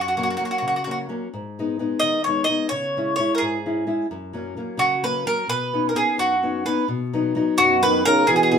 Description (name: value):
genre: italian folk, Italian serenade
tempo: 86 BPM (dotted quarters)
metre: 6/8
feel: straight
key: B major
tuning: A4 = 440 Hz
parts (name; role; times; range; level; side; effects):
- mandolin; melody; 0.0-8.6 s; F#4 to D#5; -20 LUFS; right 1 dB; none
- nylon-string guitar; accompaniment; 0.0-8.6 s; F#2 to G#4; -24 LUFS; left 3 dB; none
- clear French horn; second line; 7.6-8.6 s; B2 to D#3; -22 LUFS; right 6 dB; none
room: wet studio reverb, RT60 0.6 s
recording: band playing live in one room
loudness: -19 LUFS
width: side -7 dB against mid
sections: 0.0-6.9 A section; 6.9-8.6 A section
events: none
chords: 0.0 F#; 1.3 G#m; 2.7 C#m; 4.1 F#; 5.5 Badd9; 6.9 B